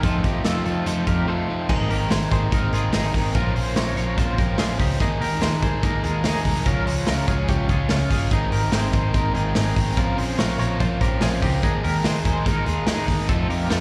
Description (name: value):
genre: jangly indie pop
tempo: 145 BPM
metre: 4/4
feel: straight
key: Bb dorian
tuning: A4 = 440 Hz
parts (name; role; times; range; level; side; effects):
- overdriven electric guitar; accompaniment; 0.0-13.8 s; F2 to Db5; -29 LUFS; equal; none
- string machine, violins; sustained chords; 0.0-13.8 s; Bb2 to F4; -35 LUFS; equal; none
- twelve-string electric guitar; arpeggios; 0.0-13.8 s; Db4 to Db5; -32 LUFS; equal; tube saturation, tremolo
- vintage muted fingered electric bass; bass; 0.0-13.8 s; G1 to F2; -26 LUFS; equal; none
- raw garage drum kit; drums; 0.0-13.8 s; crash cymbal, hi-hat, kick drum, snare drum; -26 LUFS; equal; none
room: little or no reverb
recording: live gig heard through the venue's PA, recital hall reverb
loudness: -22 LUFS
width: mono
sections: 0.0-1.7 A section; 1.7-13.8 B section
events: break 1.3-1.7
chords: 0.0 F7; 1.7 Abadd9; 3.3 Bbmadd9; 5.0 Ebsus4; 6.7 Db; 8.3 Abadd9; 10.0 Bbmadd9; 11.6 Ebsus4; 13.3 F7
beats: | 0.03 0.45 0.86 1.28 | 1.69 2.10 2.52 2.93 | 3.35 3.76 4.17 4.59 | 5.00 5.42 5.83 6.25 | 6.66 7.07 7.49 7.90 | 8.32 8.73 9.14 9.56 | 9.97 10.39 10.80 11.21 | 11.63 12.04 12.46 12.87 | 13.29 13.70